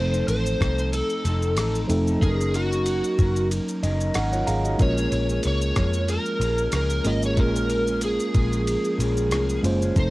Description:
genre	indie pop, bedroom pop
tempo	93 BPM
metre	4/4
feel	swing 55% on 16ths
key	Bb minor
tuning	A4 = 440 Hz
part	overdriven slide guitar	melody	0.0-10.1 s	Gb4 to Eb5	-27 LUFS	equal	ensemble chorus, cassette tape
part	electric guitar through a small old amp	accompaniment	0.0-10.1 s	Bb2 to Bb4	-32 LUFS	left 3 dB	lush chorus, warbly pitch drift, cassette tape
part	mellow tine electric piano	accompaniment	0.0-10.1 s	F3 to Bb5	-26 LUFS	right 1 dB	cassette tape
part	vintage muted picked electric bass	bass	0.0-10.1 s	F1 to F2	-25 LUFS	equal	none
part	dusty soul sampler-style drum kit	drums	0.1-10.1 s	kick drum, ride cymbal, rim click, shaker	-28 LUFS	equal	cassette tape
room	light reverb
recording	home recording on cassette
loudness	-20 LUFS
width	side -19 dB against mid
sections	0.0-10.1 A section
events	tine electric piano fill 3.5-4.8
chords	0.0 F7; 2.2 Ebm7/Gb; 4.8 Bbm7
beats	0.28 0.92 1.57 | 2.22 2.86 3.51 4.15 | 4.80 5.45 6.09 6.74 | 7.38 8.03 8.68 9.32 | 9.97

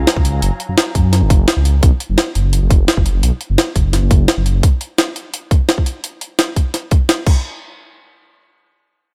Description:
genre	liquid drum and bass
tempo	171 BPM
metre	4/4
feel	straight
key	F# major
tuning	A4 = 440 Hz
part	warm studio string section	sustained chords	0.0-1.8 s	F#3 to A#5	-32 LUFS	equal	low-pass filter
part	swelling detuned saw bass	bass	0.0-4.6 s	F#1 to F#2	-17 LUFS	equal	none
part	jungle sampler-style drum kit	drums	0.1-7.3 s	crash cymbal, hi-hat, snare drum	-19 LUFS	equal	none
part	electronic kick drum	drums	0.2-7.3 s	none	-15 LUFS	equal	none
room	little or no reverb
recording	none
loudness	-15 LUFS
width	mono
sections	0.0-7.4 A section; 7.4-9.1 B section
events	filter sweep on string section 0.0-1.8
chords	0.0 F#maj9; 1.8 N.C.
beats	0.07 | 0.42 0.77 1.12 1.48 | 1.83 2.18 2.53 2.88 | 3.23 3.58 3.93 4.28 | 4.63 4.98 5.33 5.68 | 6.04 6.39 6.74 7.09

